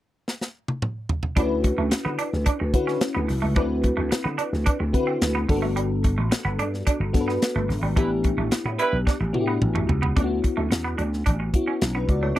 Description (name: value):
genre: polished 1980s jazz-funk pop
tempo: 109 BPM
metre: 4/4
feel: straight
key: D major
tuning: A4 = 440 Hz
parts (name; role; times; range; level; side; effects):
- tight funk drum kit; drums; 0.3-12.4 s; hi-hat, kick drum, snare drum, toms; -23 LUFS; equal; none
- bell-like FM electric piano; accompaniment; 1.4-12.4 s; Bb3 to D5; -26 LUFS; left 3 dB; analog chorus
- clean electric guitar; riff; 1.4-12.4 s; G3 to E4; -29 LUFS; right 4 dB; analog chorus
- slap bass with an envelope filter; bass; 1.4-12.4 s; G1 to D3; -26 LUFS; equal; none
- mellow horn section; second line; 8.0-9.0 s; G3 to B4; -24 LUFS; right 3 dB; none
room: little or no reverb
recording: dry, close 1970s-style studio recording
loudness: -21 LUFS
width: side -14 dB against mid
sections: 0.0-1.4 A section; 1.4-10.2 B section; 10.2-12.4 C section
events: drum fill 0.3-1.4, 9.1-10.2; band accent 8.0-10.2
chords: 0.0 N.C.; 1.4 Dmaj13; 3.6 D13; 5.5 Gmaj9; 8.0 A9sus4; 10.2 Dmaj13